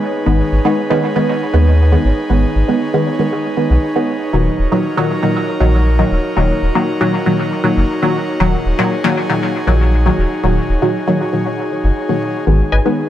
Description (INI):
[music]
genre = dub techno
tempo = 118 BPM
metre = 4/4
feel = straight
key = G# minor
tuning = A4 = 439 Hz
[part]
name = airy breathy pad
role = sustained chords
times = 0.0-13.1 s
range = D#4 to B4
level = -20 LUFS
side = right 1 dB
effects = chorus
[part]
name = filtered dub chord stab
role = stabs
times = 0.0-13.0 s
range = A#2 to B3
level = -16 LUFS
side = equal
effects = chorus, phaser, dub echo
[part]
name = bubbling stepped-filter texture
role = texture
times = 0.0-13.1 s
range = G#4 to C#5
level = -28 LUFS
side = left 1 dB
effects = chorus, built-in reverb
[part]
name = soft dub sub bass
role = bass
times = 0.3-12.8 s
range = D#1 to D#2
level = -13 LUFS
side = equal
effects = tube saturation
[part]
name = wavetable chord stab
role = riff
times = 12.7-12.8 s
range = B4 to G#5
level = -22 LUFS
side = left 3 dB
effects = vintage 12-bit sampler grit
[sound]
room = light reverb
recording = echo-heavy mix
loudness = -13 LUFS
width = side -12 dB against mid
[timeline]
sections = 0.0-13.1 A section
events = none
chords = 0.0 G#m; 4.3 D#m; 12.5 G#m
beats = | 0.26 0.77 1.28 1.79 | 2.30 2.81 3.31 3.82 | 4.33 4.84 5.35 5.86 | 6.37 6.88 7.38 7.89 | 8.40 8.91 9.42 9.93 | 10.43 10.94 11.45 11.96 | 12.47 12.98